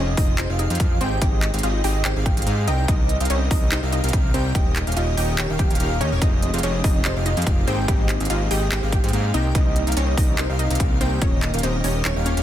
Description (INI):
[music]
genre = future bass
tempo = 144 BPM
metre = 4/4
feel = swing 54% on 16ths, half-time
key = Ab major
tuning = A4 = 440 Hz
[part]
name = wide unison pluck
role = melody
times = 0.0-12.4 s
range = C4 to G5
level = -29 LUFS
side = equal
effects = sidechain pumping, dub echo
[part]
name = airy dreamy lead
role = arpeggios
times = 0.0-12.4 s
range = C5 to G5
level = -31 LUFS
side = equal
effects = chorus, sidechain pumping, dub echo
[part]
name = supersaw stab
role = riff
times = 0.0-12.4 s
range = C4 to G5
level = -29 LUFS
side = equal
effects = sidechain pumping
[part]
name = fat analog bass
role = bass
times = 0.0-12.4 s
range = Eb1 to Ab2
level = -22 LUFS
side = equal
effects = sidechain pumping
[part]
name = electronic kick drum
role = drums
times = 0.2-11.3 s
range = none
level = -20 LUFS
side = equal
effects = none
[part]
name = pop drum kit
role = drums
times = 0.2-12.4 s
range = handclaps, hi-hat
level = -29 LUFS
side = right 1 dB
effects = none
[part]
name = glassy digital keys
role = accompaniment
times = 6.2-12.4 s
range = Ab3 to G4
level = -32 LUFS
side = left 4 dB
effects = chorus, vintage 12-bit sampler grit, sidechain pumping, dub echo
[sound]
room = digital ambience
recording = dense, heavily limited modern master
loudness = -18 LUFS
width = side -12 dB against mid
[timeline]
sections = 0.0-12.4 A section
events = kick drops out 12.1-12.4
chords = 0.0 Fm9; 1.0 Abmaj7; 2.7 Cm7; 4.5 Eb7; 6.2 Fm9; 7.7 Abmaj7; 9.3 Cm7; 11.2 Eb7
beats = 0.38 0.80 | 1.22 1.63 2.05 2.47 | 2.88 3.30 3.72 4.13 | 4.55 4.97 5.38 5.80 | 6.22 6.63 7.05 7.47 | 7.88 8.30 8.72 9.13 | 9.55 9.97 10.38 10.80 | 11.22 11.63 12.05